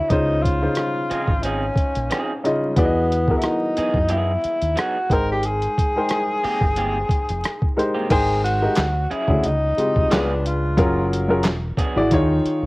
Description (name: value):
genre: R&B, neo-soul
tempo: 90 BPM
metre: 4/4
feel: swing 54% on 16ths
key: Ab major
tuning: A4 = 440 Hz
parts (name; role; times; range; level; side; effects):
- mellow tenor saxophone; melody; 0.0-11.1 s; B3 to Bb4; -23 LUFS; equal; cassette tape
- warm upright piano; accompaniment; 0.0-12.7 s; Db3 to G5; -22 LUFS; left 1 dB; none
- deep dub fingered electric bass; bass; 0.1-12.7 s; E1 to F#2; -24 LUFS; equal; none
- boom bap sampler-style drum kit; drums; 0.1-12.6 s; crash cymbal, handclaps, hi-hat, kick drum, rim click, snare drum; -22 LUFS; equal; cassette tape
- electric guitar through a small old amp; second line; 0.8-12.0 s; Eb3 to Ab4; -30 LUFS; right 3 dB; spring reverb
room: light reverb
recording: home recording on cassette, vinyl crackle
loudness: -18 LUFS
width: side -22 dB against mid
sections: 0.0-8.1 A section; 8.1-12.7 B section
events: none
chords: 0.1 Dbmaj9; 2.8 Emaj9; 5.1 Abmaj9; 8.8 Dmaj9#11; 9.4 Dbmaj9#11; 10.1 Db7b9; 10.8 Gbmaj9; 11.4 E9; 12.1 Eb9sus4